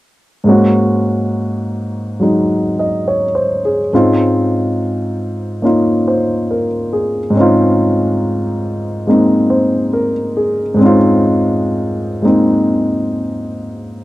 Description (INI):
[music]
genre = jazz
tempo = 70 BPM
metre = 4/4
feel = swing 66% on 8ths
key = Db major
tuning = A4 = 441 Hz
[part]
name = warm grand piano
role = accompaniment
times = 0.4-14.0 s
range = Ab2 to Eb5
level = -12 LUFS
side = equal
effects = none
[sound]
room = little or no reverb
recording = dry, close 1970s-style studio recording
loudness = -12 LUFS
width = side -17 dB against mid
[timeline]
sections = 0.4-14.0 A section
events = none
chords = 0.4 Ab7sus4; 3.9 Dbmaj9/Ab